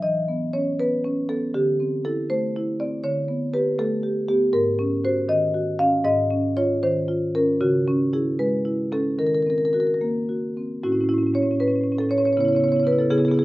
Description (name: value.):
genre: classical, contemporary piece for solo marimba.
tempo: 79 BPM (dotted quarters).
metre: 6/8.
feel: rubato.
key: A lydian.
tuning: A4 = 440 Hz.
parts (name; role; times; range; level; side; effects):
marimba with medium mallets; solo; 0.0-13.4 s; G#2 to F5; -20 LUFS; equal; none.
room: little or no reverb.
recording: close, detailed microphones.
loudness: -20 LUFS.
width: side -18 dB against mid.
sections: 0.0-10.8 A section; 10.8-13.4 B section.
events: none.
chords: 0.0 Badd9/E; 1.5 D11; 3.0 A9/D; 4.5 G#11; 6.1 D#sus2/G#; 7.6 C#m7; 9.2 D#m6; 10.8 A; 12.4 C#m7.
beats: | 0.04 0.79 | 1.54 2.29 | 3.04 3.79 | 4.54 5.30 | 6.05 6.82 | 7.60 8.39 | 9.19 10.02 | 10.83 11.60 | 12.35 13.11.